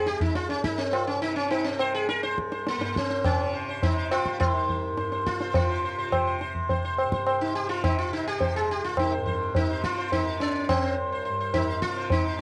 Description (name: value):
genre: indian classical, Hindustani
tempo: 105 BPM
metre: 4/4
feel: straight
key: C raga bhairavi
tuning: A4 = 442 Hz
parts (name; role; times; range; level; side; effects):
- sitar; melody; 0.0-12.4 s; Bb3 to C5; -30 LUFS; equal; cassette tape
- tanpura; drone; 0.0-12.4 s; C2 to C3; -38 LUFS; equal; cassette tape
- tabla; percussion; 0.1-12.4 s; none; -29 LUFS; equal; none
room: wet booth ambience, RT60 0.2 s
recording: home recording on cassette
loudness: -27 LUFS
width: mono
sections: 0.0-12.4 A section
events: none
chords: none